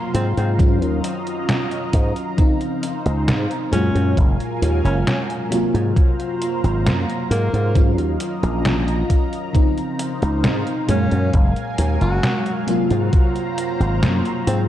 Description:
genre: vaporwave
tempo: 67 BPM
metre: 4/4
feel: straight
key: unclear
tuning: A4 = 440 Hz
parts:
  - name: FM electric piano with soft pad layer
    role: accompaniment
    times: 0.0-14.7 s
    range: Bb2 to F5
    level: -23 LUFS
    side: left 1 dB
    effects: tremolo, ensemble chorus, tape echo
  - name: lush unison pad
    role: sustained chords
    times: 0.0-14.7 s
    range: Gb3 to C6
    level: -29 LUFS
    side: equal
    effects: chorus, phaser
  - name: clear alto saxophone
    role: melody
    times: 0.1-14.6 s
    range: Bb3 to Gb4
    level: -28 LUFS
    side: equal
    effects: tape echo
  - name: slap bass with an envelope filter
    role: bass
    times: 0.1-14.7 s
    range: Gb1 to Ab2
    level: -19 LUFS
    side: equal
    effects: none
  - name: detuned 8-bit digital drum machine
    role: drums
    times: 0.1-14.7 s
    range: hi-hat, snare drum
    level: -24 LUFS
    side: equal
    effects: overdrive
  - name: electronic kick drum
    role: drums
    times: 0.6-13.3 s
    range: none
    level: -16 LUFS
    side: equal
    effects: none
room: light reverb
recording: dark, warm production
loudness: -17 LUFS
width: side -12 dB against mid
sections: 0.0-14.7 A section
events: none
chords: 0.0 Ab13; 0.6 Ebm9; 2.4 Dbmaj9; 3.7 Gbmaj9; 5.5 Ab13; 7.8 Ebm9; 9.5 Dbmaj9; 10.9 Gbmaj9; 12.7 Ab13

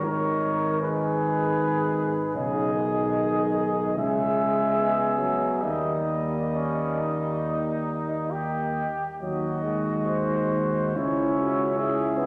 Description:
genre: classical, hymn-like piece for brass band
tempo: 64-81 BPM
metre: 4/4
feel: rubato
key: G# minor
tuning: A4 = 441 Hz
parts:
  - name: dark trumpet section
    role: melody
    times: 0.0-12.3 s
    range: B4 to E5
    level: -32 LUFS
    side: equal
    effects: none
  - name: warm flugelhorn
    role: second line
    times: 0.0-12.3 s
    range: C#4 to A#4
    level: -32 LUFS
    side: equal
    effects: none
  - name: clear trombone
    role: accompaniment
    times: 0.0-12.3 s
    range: C#3 to C#4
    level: -33 LUFS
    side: equal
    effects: none
  - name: warm euphonium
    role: accompaniment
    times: 0.0-12.3 s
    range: A#3 to F#4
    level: -34 LUFS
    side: equal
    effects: none
  - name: mellow tuba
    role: bass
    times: 0.0-12.3 s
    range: G#1 to D#2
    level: -33 LUFS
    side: equal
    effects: none
room: wet concert hall reverb, RT60 2.1 s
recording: none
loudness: -26 LUFS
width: mono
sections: 0.0-12.3 A section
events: none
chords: 0.0 D#7(no3)/G#; 2.3 G#m/B; 4.0 C#m; 5.6 D#; 9.2 G#7/D#; 11.0 C#m

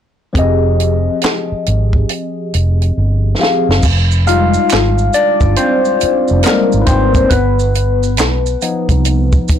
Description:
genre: R&B, neo-soul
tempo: 69 BPM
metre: 4/4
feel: swing 63% on 16ths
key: F dorian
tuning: A4 = 440 Hz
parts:
  - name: barky tine electric piano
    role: accompaniment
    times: 0.3-9.6 s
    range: F3 to F5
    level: -14 LUFS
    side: left 3 dB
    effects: phaser
  - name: compact cocktail drum kit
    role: drums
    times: 0.3-9.6 s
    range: crash cymbal, handclaps, hi-hat, kick drum, snare drum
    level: -16 LUFS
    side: right 1 dB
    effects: soft clipping on snare
  - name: vintage muted fingered electric bass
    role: bass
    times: 0.4-9.5 s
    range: F1 to C2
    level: -14 LUFS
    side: right 1 dB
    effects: transformer saturation
  - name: maracas and finger snaps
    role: percussion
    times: 3.8-9.6 s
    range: none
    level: -27 LUFS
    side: right 10 dB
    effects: none
room: light reverb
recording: blown-out, overdriven recording, overdrive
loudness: -11 LUFS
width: side -9 dB against mid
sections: 0.4-3.8 A section; 3.8-9.6 B section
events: drum fill 3.0-3.8; tine electric piano solo 3.8-9.6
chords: 0.4 Fm7; 7.3 G7b13

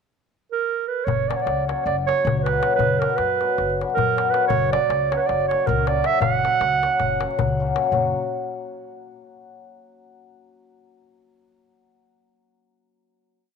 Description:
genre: balkan folk, Balkan wedding band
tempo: 316 BPM (eighths)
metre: 9/8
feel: straight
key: unclear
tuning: A4 = 439 Hz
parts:
  - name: mellow clarinet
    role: melody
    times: 0.5-7.6 s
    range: A#4 to F#5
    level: -22 LUFS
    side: right 8 dB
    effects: none
  - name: upright bass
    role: bass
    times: 1.1-8.1 s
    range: F#1 to F#2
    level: -28 LUFS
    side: left 1 dB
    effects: none
  - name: darbuka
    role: percussion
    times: 1.1-8.1 s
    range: none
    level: -27 LUFS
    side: left 9 dB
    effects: none
  - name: cimbalom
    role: accompaniment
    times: 1.3-8.1 s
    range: F#3 to F#4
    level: -25 LUFS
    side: left 6 dB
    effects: none
room: moderate plate reverb, RT60 2.9 s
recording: 1960s-style stereo with parts hard left and right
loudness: -19 LUFS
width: side -6 dB against mid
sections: 0.0-1.1 pickup bar; 1.1-7.9 A section; 7.9-9.6 final chord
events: none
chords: 0.0 N.C.; 1.1 F#; 2.8 Bm/F#; 4.5 F#

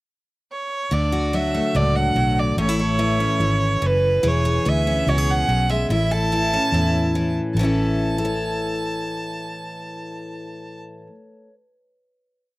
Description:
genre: honky-tonk and classic country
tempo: 144 BPM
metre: 4/4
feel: straight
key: A major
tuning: A4 = 441 Hz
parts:
  - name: clear fiddle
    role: second line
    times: 0.5-10.8 s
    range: B4 to A5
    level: -24 LUFS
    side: right 2 dB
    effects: none
  - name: picked steel-string acoustic guitar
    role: accompaniment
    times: 0.9-11.5 s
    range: A2 to C#5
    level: -24 LUFS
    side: left 1 dB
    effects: none
  - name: vintage muted fingered electric bass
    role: bass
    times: 0.9-10.8 s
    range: E1 to E2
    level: -22 LUFS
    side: equal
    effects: none
room: little or no reverb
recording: recorded outdoors, with no room sound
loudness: -18 LUFS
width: side -20 dB against mid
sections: 0.0-0.9 pickup bar; 0.9-7.6 interlude; 7.6-10.9 final chord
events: fiddle solo 0.9-7.6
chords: 0.0 N.C.; 0.9 D; 2.6 A; 4.2 E6; 5.9 A

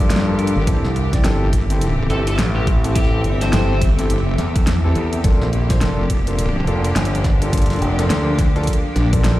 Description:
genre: glitch hop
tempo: 105 BPM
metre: 4/4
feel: swing 60% on 16ths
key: A phrygian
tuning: A4 = 439 Hz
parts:
  - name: clear studio string section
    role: sustained chords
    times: 0.0-9.4 s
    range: E3 to G4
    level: -29 LUFS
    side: equal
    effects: sidechain pumping
  - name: warm concert grand piano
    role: stabs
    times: 0.0-9.4 s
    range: Bb3 to D5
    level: -25 LUFS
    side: left 1 dB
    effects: sidechain pumping, digital delay
  - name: growling fingered electric bass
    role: bass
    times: 0.0-8.7 s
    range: F1 to G2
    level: -19 LUFS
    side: equal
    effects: overdrive
  - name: granular cloud pad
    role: texture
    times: 0.0-9.4 s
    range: C4 to G5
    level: -28 LUFS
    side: left 1 dB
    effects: built-in reverb, sidechain pumping
  - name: pop drum kit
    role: drums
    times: 0.1-9.4 s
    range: hi-hat, snare drum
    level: -24 LUFS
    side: equal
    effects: overdrive
  - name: wobble bass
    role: bass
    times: 0.6-9.4 s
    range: F1 to E2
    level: -18 LUFS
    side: equal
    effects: chorus, overdrive
  - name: electronic kick drum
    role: drums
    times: 0.7-9.2 s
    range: none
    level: -18 LUFS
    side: equal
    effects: overdrive
  - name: smooth overdriven lead guitar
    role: melody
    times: 2.1-3.8 s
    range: G4 to C5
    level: -28 LUFS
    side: left 2 dB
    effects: digital delay
room: light reverb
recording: played on a big sound system in a bare room, large studio reverb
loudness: -15 LUFS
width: side -15 dB against mid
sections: 0.0-9.4 A section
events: band accent 9.2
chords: 0.0 Gm7; 0.7 Am7; 5.2 Gm7

